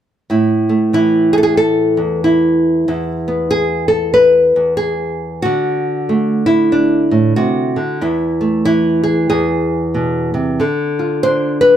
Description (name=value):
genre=folk, solo fingerstyle acoustic guitar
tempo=93 BPM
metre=4/4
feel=swing 61% on 8ths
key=A harmonic minor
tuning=A4 = 440 Hz
part: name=nylon-string guitar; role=solo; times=0.3-11.8 s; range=E2 to C5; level=-12 LUFS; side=equal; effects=none
room=light reverb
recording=none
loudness=-12 LUFS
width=side -10 dB against mid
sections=0.3-11.8 A section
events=none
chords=0.3 A5; 2.9 E; 5.4 D; 8.0 A5/E; 9.3 E; 10.6 Dm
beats=| 0.29 0.93 1.58 2.22 | 2.87 3.51 4.16 4.80 | 5.44 6.09 6.73 7.37 | 8.02 8.66 9.30 9.95 | 10.59 11.23